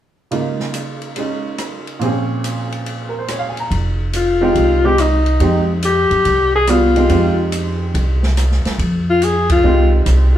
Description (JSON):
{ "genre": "jazz, small-group swing and bop", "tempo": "142 BPM", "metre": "4/4", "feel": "swing 67% on 8ths", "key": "F minor", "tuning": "A4 = 437 Hz", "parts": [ { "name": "bright upright piano", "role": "accompaniment", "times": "0.3-10.3 s", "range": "Bb2 to Bb5", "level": "-20 LUFS", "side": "right 4 dB", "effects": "none" }, { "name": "open jazz drum kit", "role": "drums", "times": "0.3-10.2 s", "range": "hi-hat, kick drum, ride cymbal, rim click, snare drum", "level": "-26 LUFS", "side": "equal", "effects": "none" }, { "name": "upright bass", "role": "bass", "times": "3.7-10.4 s", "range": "F1 to Gb2", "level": "-16 LUFS", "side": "equal", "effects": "none" }, { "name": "warm alto saxophone", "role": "melody", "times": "4.2-10.4 s", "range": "Eb4 to Ab4", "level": "-15 LUFS", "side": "left 3 dB", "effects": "none" } ], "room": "wet club reverb, RT60 0.8 s", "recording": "heard from further back in the room", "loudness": "-14 LUFS", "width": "side -12 dB against mid", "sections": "0.3-3.7 A section; 3.7-10.4 B section", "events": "band accent 9.4", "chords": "0.3 Db69; 2.0 Bbm7; 3.7 Fm9" }